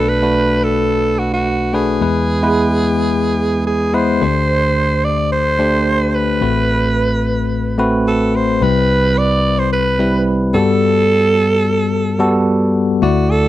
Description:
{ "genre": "pop", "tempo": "109 BPM", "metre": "4/4", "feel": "straight", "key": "unclear", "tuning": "A4 = 440 Hz", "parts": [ { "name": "raspy alto saxophone", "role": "melody", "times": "0.0-13.5 s", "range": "F#4 to D5", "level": "-17 LUFS", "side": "right 2 dB", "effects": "slapback echo" }, { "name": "bell-like tine electric piano", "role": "accompaniment", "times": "0.0-13.5 s", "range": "A1 to D5", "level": "-15 LUFS", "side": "left 1 dB", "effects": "auto-pan" } ], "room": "light reverb", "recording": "dry, close 1970s-style studio recording", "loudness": "-13 LUFS", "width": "side -14 dB against mid", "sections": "0.0-4.2 A section; 4.2-13.0 B section", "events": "none", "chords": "0.0 Bm7; 2.0 E; 4.2 D7sus4; 6.4 Am69; 8.6 Cmaj7; 10.5 Gmaj9", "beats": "0.36 0.91 1.46 | 2.01 2.56 3.11 3.66 | 4.21 4.76 5.32 5.87 | 6.42 6.97 7.52 8.07 | 8.62 9.17 9.72 10.27 | 10.82 11.37 11.92 12.47 | 13.02" }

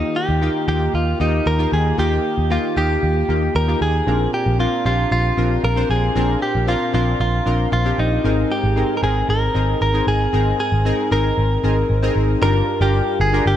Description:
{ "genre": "1980s-style pop", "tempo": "115 BPM", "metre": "4/4", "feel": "straight", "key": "Bb mixolydian", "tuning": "A4 = 440 Hz", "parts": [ { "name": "direct-recorded clean electric guitar", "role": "melody", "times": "0.0-13.6 s", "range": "Eb4 to Bb4", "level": "-21 LUFS", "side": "equal", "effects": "shimmer reverb" }, { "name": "chorused retro synth keys", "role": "accompaniment", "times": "0.0-13.6 s", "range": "G2 to C5", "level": "-22 LUFS", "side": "left 2 dB", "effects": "shimmer reverb" }, { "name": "vintage muted picked electric bass", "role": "bass", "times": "0.3-13.6 s", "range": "G1 to Eb2", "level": "-19 LUFS", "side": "equal", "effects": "none" } ], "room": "light reverb, digital ambience", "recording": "none", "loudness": "-16 LUFS", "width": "side -11 dB against mid", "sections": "0.0-12.4 A section; 12.4-13.6 B section", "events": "none", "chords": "0.0 Ebadd9; 4.1 Bbadd9; 8.2 Abadd9; 12.4 Gm7", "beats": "0.42 0.94 1.46 | 1.98 2.51 3.03 3.55 | 4.07 4.59 5.11 5.64 | 6.16 6.68 7.20 7.72 | 8.24 8.77 9.29 9.81 | 10.33 10.85 11.38 11.90 | 12.42 12.94 13.46" }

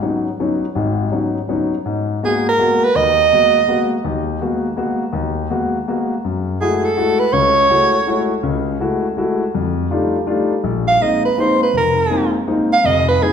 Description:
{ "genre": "jazz", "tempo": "164 BPM", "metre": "3/4", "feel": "swing 64% on 8ths", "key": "G# phrygian", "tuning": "A4 = 440 Hz", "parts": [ { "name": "warm concert grand piano", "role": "accompaniment", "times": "0.0-13.3 s", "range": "F1 to F#4", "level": "-18 LUFS", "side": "left 2 dB", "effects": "none" }, { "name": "clear soprano saxophone", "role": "melody", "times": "2.2-3.9, 6.6-8.3, 10.9-13.3 s", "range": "G#4 to F5", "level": "-14 LUFS", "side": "right 3 dB", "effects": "none" } ], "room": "wet recital hall reverb, RT60 1.5 s", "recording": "recorded in a church or concert hall", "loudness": "-15 LUFS", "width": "side -7 dB against mid", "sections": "0.0-1.9 A section; 1.9-10.6 B section; 10.6-13.3 C section", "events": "soprano saxophone solo 10.6-13.3", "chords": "0.0 Db9sus4; 1.9 G#m9; 6.2 F#m9; 9.5 F13; 10.6 Bb9sus4", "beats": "0.02 0.39 | 0.75 1.12 1.48 | 1.85 2.21 2.58 | 2.94 3.31 3.68 | 4.04 4.41 4.77 | 5.14 5.50 5.87 | 6.24 6.60 6.97 | 7.33 7.70 8.07 | 8.43 8.80 9.17 | 9.53 9.90 10.27 | 10.63 11.00 11.37 | 11.73 12.10 12.47 | 12.83 13.20" }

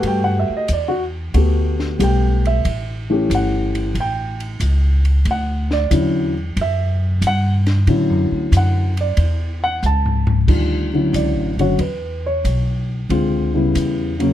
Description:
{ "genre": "jazz piano trio", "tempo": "92 BPM", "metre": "4/4", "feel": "swing 69% on 8ths", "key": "D major", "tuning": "A4 = 440 Hz", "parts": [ { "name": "dark baby grand piano", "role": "melody", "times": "0.0-14.3 s", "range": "C#3 to A5", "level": "-19 LUFS", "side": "left 1 dB", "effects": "none" }, { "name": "upright bass", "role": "bass", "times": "0.0-14.3 s", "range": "F#1 to A2", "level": "-18 LUFS", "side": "equal", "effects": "none" }, { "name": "compact cocktail drum kit", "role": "drums", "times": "0.0-14.3 s", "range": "crash cymbal, hi-hat, kick drum, ride cymbal, snare drum, toms", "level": "-27 LUFS", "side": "left 2 dB", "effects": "none" } ], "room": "little or no reverb", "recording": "close, detailed microphones", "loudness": "-16 LUFS", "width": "side -12 dB against mid", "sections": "0.0-10.5 A section; 10.5-14.3 B section", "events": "grand piano solo 0.0-10.5; drum fill 9.8-10.5", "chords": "0.0 Gmaj9; 2.6 A7; 5.3 Dmaj9; 13.1 C#m7b5", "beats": "| 0.04 0.69 1.34 1.99 | 2.65 3.30 3.95 4.61 | 5.26 5.91 6.56 7.22 | 7.87 8.52 9.18 9.83 | 10.48 11.13 11.79 12.44 | 13.09 13.75" }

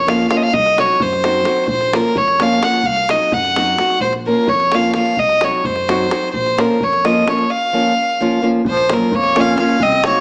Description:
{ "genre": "balkan folk, Balkan wedding band", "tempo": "258 BPM (eighths)", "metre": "5/8", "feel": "straight", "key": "Bb minor", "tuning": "A4 = 440 Hz", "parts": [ { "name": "warm violin", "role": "melody", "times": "0.0-10.2 s", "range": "Bb4 to Gb5", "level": "-18 LUFS", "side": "equal", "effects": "none" }, { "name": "upright bass", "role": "bass", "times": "0.0-10.1 s", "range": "Bb1 to Gb2", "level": "-31 LUFS", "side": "equal", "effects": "none" }, { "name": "nylon-string guitar", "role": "accompaniment", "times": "0.1-10.2 s", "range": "F3 to Gb4", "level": "-21 LUFS", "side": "equal", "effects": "none" }, { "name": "davul", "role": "percussion", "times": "0.1-10.2 s", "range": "none", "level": "-26 LUFS", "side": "equal", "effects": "none" }, { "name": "warm clarinet", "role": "second line", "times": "8.7-10.2 s", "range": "F3 to Db4", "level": "-22 LUFS", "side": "equal", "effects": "none" } ], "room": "moderate recital hall reverb, RT60 1.6 s", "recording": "small speaker sound", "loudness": "-16 LUFS", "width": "mono", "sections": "0.0-8.7 A section; 8.7-10.2 A section", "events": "none", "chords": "0.0 Bbm; 0.5 Cdim; 1.7 Bbm; 2.9 Cdim; 4.0 Bbm; 5.2 Cdim; 6.3 Bbm", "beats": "0.07 0.30 | 0.53 0.76 0.99 1.23 1.46 | 1.69 1.93 2.16 2.39 2.62 | 2.85 3.09 3.32 3.55 3.78 | 4.01 4.25 4.48 4.71 4.94 | 5.18 5.41 5.64 5.87 6.10 | 6.34 6.57 6.80 7.03 7.26 | 7.50 7.73 7.96 8.19 8.42 | 8.65 8.88 9.11 9.35 9.58 | 9.81 10.04" }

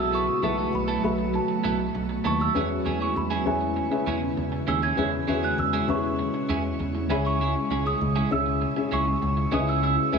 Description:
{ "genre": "pop", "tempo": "99 BPM", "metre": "4/4", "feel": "straight", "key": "unclear", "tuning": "A4 = 441 Hz", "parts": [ { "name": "celesta", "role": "melody", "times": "0.0-10.2 s", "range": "G#5 to G#6", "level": "-29 LUFS", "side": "right 4 dB", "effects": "shimmer reverb, digital delay" }, { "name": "warm concert grand piano", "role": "accompaniment", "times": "0.0-10.2 s", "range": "B2 to E5", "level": "-29 LUFS", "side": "left 5 dB", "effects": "shimmer reverb" }, { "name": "ethereal airy pad", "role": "sustained chords", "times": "0.0-10.2 s", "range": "B2 to G#4", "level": "-30 LUFS", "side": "equal", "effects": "ensemble chorus, built-in reverb, phaser, shimmer reverb" }, { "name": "clean electric guitar", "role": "riff", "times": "0.0-10.2 s", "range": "F#3 to A4", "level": "-32 LUFS", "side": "right 9 dB", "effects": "lush chorus, shimmer reverb" }, { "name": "picked electric bass", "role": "bass", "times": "0.0-10.2 s", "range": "B1 to E2", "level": "-29 LUFS", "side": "right 1 dB", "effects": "none" } ], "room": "moderate plate reverb, RT60 3.4 s", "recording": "none", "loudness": "-23 LUFS", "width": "side -5 dB against mid", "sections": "0.0-10.2 A section", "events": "none", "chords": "0.0 B7sus4; 2.6 E6; 7.1 C#m", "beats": "| 0.13 0.73 1.34 1.95 | 2.55 3.16 3.77 4.37 | 4.98 5.58 6.19 6.80 | 7.40 8.01 8.61 9.22 | 9.83" }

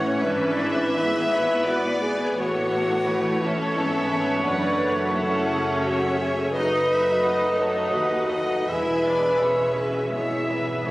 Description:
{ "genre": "classical", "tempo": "85 BPM", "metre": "3/4", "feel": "rubato", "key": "unclear", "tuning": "A4 = 441 Hz", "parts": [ { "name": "dark chamber violin section", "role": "melody", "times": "0.0-10.9 s", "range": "C#5 to G#5", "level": "-34 LUFS", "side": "left 2 dB", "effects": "none" }, { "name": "bright silver concert flute", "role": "second line", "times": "0.0-10.9 s", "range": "C#5 to B5", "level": "-34 LUFS", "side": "left 1 dB", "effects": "none" }, { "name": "rich chamber violin section", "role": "second line", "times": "0.0-10.9 s", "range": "A4 to E5", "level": "-31 LUFS", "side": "equal", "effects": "none" }, { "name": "warm cor anglais", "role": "second line", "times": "0.0-10.9 s", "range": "B4 to E5", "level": "-31 LUFS", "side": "right 1 dB", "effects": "none" }, { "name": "mellow bassoon", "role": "accompaniment", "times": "0.0-10.9 s", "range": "E3 to A3", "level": "-31 LUFS", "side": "equal", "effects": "none" }, { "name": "rich chamber viola section", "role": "accompaniment", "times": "0.0-10.9 s", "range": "A3 to C#5", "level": "-30 LUFS", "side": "equal", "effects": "none" }, { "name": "dark trombone section", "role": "sustained chords", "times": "0.0-10.9 s", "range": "E3 to C#4", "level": "-36 LUFS", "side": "right 1 dB", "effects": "none" }, { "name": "warm French horn section", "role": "sustained chords", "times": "0.0-10.9 s", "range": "C#4 to B4", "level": "-25 LUFS", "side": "equal", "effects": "none" }, { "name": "concert harp", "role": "arpeggios", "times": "0.0-10.9 s", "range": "E2 to F#4", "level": "-38 LUFS", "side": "left 2 dB", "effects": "none" }, { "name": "warm trumpet section", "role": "stabs", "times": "0.0-10.9 s", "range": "B4 to E5", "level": "-31 LUFS", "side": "equal", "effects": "none" }, { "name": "clear chamber double bass section", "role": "bass", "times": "0.0-10.9 s", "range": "E1 to D#2", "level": "-36 LUFS", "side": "right 1 dB", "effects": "none" }, { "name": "rich studio cello section", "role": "bass", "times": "0.0-10.9 s", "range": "D#2 to A2", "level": "-34 LUFS", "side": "right 1 dB", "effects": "none" }, { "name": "timpani", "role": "percussion", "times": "8.7-10.9 s", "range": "E2 to A2", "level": "-44 LUFS", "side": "equal", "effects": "none" } ], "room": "wet recital hall reverb, RT60 1.7 s", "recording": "recorded on a phone in the room, studio reverb, compression", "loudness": "-20 LUFS", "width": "side -18 dB against mid", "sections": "0.0-10.9 A section", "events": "none", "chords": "0.2 E7/G#; 2.4 A; 4.4 F#m; 6.5 B7/F#; 8.7 E", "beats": "| 0.24 0.95 1.67 | 2.37 3.07 3.75 | 4.44 5.12 5.82 | 6.53 7.23 7.92 | 8.67 9.40 10.10 | 10.86" }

